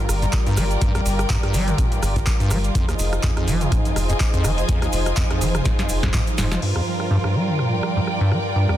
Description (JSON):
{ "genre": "acid house", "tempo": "124 BPM", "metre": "4/4", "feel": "swing 56% on 16ths", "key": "G phrygian", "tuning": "A4 = 440 Hz", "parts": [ { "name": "warm analog pad", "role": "sustained chords", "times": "0.0-8.8 s", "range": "G2 to Bb4", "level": "-28 LUFS", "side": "right 2 dB", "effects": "chorus, tremolo, sidechain pumping" }, { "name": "acid bass, square", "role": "riff", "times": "0.0-8.8 s", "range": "Eb2 to G3", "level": "-23 LUFS", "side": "equal", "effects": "tube saturation, vintage 12-bit sampler grit, dub echo" }, { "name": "dark symphonic string section", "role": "texture", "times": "0.0-8.8 s", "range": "F4 to Ab5", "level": "-27 LUFS", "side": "left 1 dB", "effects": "sidechain pumping" }, { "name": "round analog bass", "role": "bass", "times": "0.1-6.6 s", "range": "F1 to G1", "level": "-23 LUFS", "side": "equal", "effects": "tube saturation, sidechain pumping" }, { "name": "booming analog drum machine", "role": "drums", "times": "0.1-8.8 s", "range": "crash cymbal, handclaps, hi-hat, rim click, snare drum", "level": "-29 LUFS", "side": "equal", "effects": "none" }, { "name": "cabasa", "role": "percussion", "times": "0.1-6.6 s", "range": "none", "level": "-34 LUFS", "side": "right 4 dB", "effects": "none" }, { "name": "electronic kick drum", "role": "drums", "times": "0.3-6.2 s", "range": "none", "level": "-22 LUFS", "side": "equal", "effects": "none" } ], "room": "light reverb, digital ambience", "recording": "dense, heavily limited modern master", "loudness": "-18 LUFS", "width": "side -12 dB against mid", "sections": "0.0-6.6 A section; 6.6-8.8 B section", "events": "drum fill 5.7-6.6", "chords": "0.0 Gm7; 2.8 Fm7; 6.6 Gm7" }